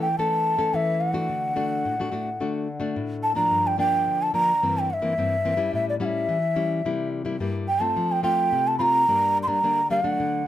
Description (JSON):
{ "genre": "samba", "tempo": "108 BPM", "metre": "4/4", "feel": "straight", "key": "G minor from 3.5 s", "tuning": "A4 = 440 Hz", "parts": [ { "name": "breathy mellow bansuri", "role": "melody", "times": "0.0-10.5 s", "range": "D5 to C6", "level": "-22 LUFS", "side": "right 1 dB", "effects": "none" }, { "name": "nylon-string guitar", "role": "accompaniment", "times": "0.0-10.5 s", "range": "G2 to A4", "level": "-27 LUFS", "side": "left 2 dB", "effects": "none" } ], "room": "moderate studio ambience, RT60 0.5 s", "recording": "none", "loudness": "-21 LUFS", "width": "side -12 dB against mid", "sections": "0.0-3.5 A section; 3.5-10.5 B section", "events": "none", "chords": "0.0 A/E; 1.3 D; 3.5 Gm7; 4.6 C7/G; 5.7 A7; 6.9 C7; 8.0 F; 9.1 Gm", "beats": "0.19 0.74 | 1.30 1.86 2.41 2.97 | 3.52 4.08 4.64 5.19 | 5.75 6.30 6.86 7.42 | 7.97 8.53 9.08 9.64 | 10.19" }